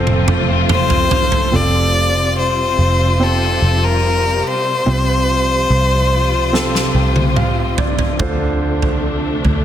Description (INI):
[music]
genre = pop ballad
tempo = 72 BPM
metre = 4/4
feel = straight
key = F major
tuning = A4 = 440 Hz
[part]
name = warm concert grand piano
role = accompaniment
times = 0.0-9.6 s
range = C3 to G5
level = -22 LUFS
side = right 3 dB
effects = none
[part]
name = warm studio string section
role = sustained chords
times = 0.0-9.6 s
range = C3 to F4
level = -22 LUFS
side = left 2 dB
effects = none
[part]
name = twelve-string electric guitar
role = arpeggios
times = 0.0-2.1 s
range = F2 to F4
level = -26 LUFS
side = left 4 dB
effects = analog chorus, digital delay
[part]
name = vintage muted fingered electric bass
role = bass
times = 0.0-9.6 s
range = F1 to D2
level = -18 LUFS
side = equal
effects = none
[part]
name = huge arena drum kit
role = drums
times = 0.1-1.5, 6.5-9.6 s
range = kick drum, snare drum, toms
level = -18 LUFS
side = right 1 dB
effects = none
[part]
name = clear violin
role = melody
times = 0.7-7.8 s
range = A4 to D5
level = -17 LUFS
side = left 3 dB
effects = none
[sound]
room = light reverb, small room ambience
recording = dense, heavily limited modern master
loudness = -13 LUFS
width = side -10 dB against mid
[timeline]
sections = 0.0-1.5 A section; 1.5-9.6 B section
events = drum fill 0.0-1.5, 6.5-8.2; grand piano fill 6.5-8.2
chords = 0.0 F; 1.5 Fadd9; 4.9 Csus4; 8.2 Dm7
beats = 0.70 | 1.53 2.37 3.20 4.03 | 4.87 5.70 6.53 7.37 | 8.20 9.03